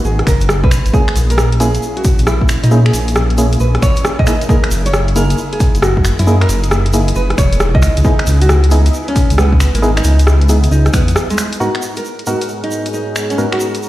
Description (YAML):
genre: UK garage, two-step garage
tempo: 135 BPM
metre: 4/4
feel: swing 66% on 16ths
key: G# minor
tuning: A4 = 445 Hz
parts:
  - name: nylon-string guitar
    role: melody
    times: 0.0-13.8 s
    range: G#3 to D#5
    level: -21 LUFS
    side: right 1 dB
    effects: digital delay
  - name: soft string machine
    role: sustained chords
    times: 0.0-13.9 s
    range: G#2 to B4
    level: -26 LUFS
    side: left 1 dB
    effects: ensemble chorus, sidechain pumping
  - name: dark detuned saw bass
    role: bass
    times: 0.0-11.2 s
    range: E1 to A#2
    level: -12 LUFS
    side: equal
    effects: none
  - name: egg shaker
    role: percussion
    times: 0.0-13.9 s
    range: none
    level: -28 LUFS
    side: right 2 dB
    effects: none
  - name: garage drum kit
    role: drums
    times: 0.2-13.8 s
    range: finger snaps, hi-hat, rim click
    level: -20 LUFS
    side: equal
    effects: none
  - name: electronic kick drum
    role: drums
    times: 0.3-11.1 s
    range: none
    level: -14 LUFS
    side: equal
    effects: none
  - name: percussive organ stab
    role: stabs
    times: 0.9-13.5 s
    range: G#2 to A#4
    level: -20 LUFS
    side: equal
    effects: chorus, digital delay
  - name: warbly tape-like pad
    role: texture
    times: 12.1-13.9 s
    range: G#4 to A#5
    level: -25 LUFS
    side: right 3 dB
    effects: chorus, built-in reverb, phaser, sidechain pumping
room: light reverb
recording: played on a big sound system in a bare room, stone room reverb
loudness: -11 LUFS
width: side -15 dB against mid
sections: 0.0-11.6 A section; 11.6-13.9 B section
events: filter sweep on synth stab 0.0-11.6; break 11.2-11.6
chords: 0.0 G#m9; 0.9 A#m7b5; 4.3 F#13; 7.8 C#m9; 11.6 G#m9